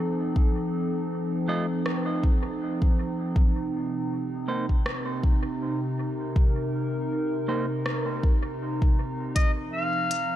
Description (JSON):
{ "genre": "ambient dub", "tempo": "80 BPM", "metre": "4/4", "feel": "swing 56% on 16ths", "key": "F mixolydian", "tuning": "A4 = 435 Hz", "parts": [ { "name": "warbly tape-like pad", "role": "sustained chords", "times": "0.0-10.4 s", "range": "C3 to Bb4", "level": "-28 LUFS", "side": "equal", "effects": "chorus, built-in reverb" }, { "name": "electronic kick drum", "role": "drums", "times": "0.4-9.5 s", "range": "none", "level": "-22 LUFS", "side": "equal", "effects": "none" }, { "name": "semi-hollow electric guitar", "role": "stabs", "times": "1.5-7.7 s", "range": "A3 to Eb5", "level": "-36 LUFS", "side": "right 3 dB", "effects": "dub echo" }, { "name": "organic electronic drum kit", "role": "drums", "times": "1.9-10.3 s", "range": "hi-hat, rim click", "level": "-36 LUFS", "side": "equal", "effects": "dub echo" }, { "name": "warm clarinet", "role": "melody", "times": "9.4-10.4 s", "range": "Eb5 to F5", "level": "-26 LUFS", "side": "left 1 dB", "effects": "none" } ], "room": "light reverb", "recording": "none", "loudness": "-24 LUFS", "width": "side -12 dB against mid", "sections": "0.0-10.4 A section", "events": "none", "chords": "0.0 F7; 3.4 Cm7; 9.4 F7(no3)", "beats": "| 0.36 1.11 1.86 2.61 | 3.36 4.11 4.86 5.61 | 6.36 7.11 7.86 8.61 | 9.36 10.11" }